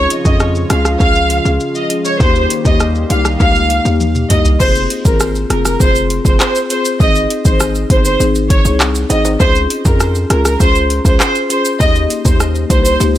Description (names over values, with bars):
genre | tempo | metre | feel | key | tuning
dancehall | 100 BPM | 4/4 | straight | F minor | A4 = 440 Hz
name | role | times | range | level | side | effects
hollow soft pad | sustained chords | 0.0-4.6 s | Db3 to G4 | -24 LUFS | right 1 dB | chorus, sidechain pumping
hard-hitting 808-style bass | bass | 0.0-13.2 s | F1 to F2 | -16 LUFS | equal | none
afro-pop drum kit | drums | 0.1-13.2 s | crash cymbal, handclaps, hi-hat, kick drum, rim click, shaker, toms | -14 LUFS | equal | none
marimba with medium mallets | accompaniment | 0.2-13.1 s | Bb3 to Ab4 | -18 LUFS | left 4 dB | none
warm studio violin section | melody | 0.3-13.0 s | Bb4 to F5 | -16 LUFS | right 1 dB | digital delay
maracas and timbales | percussion | 4.6-13.2 s | none | -25 LUFS | right 6 dB | none
room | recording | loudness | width
digital ambience | none | -10 LUFS | side -12 dB against mid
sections
0.0-4.6 A section; 4.6-13.2 B section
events
drum fill 4.0-4.6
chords
0.0 Db; 2.2 Eb; 4.6 Fm; 7.0 Ab; 9.4 Db; 11.8 Eb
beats
0.40 1.00 1.60 | 2.20 2.80 3.40 4.00 | 4.60 5.20 5.80 6.40 | 7.00 7.60 8.20 8.80 | 9.40 10.00 10.60 11.20 | 11.80 12.40 13.00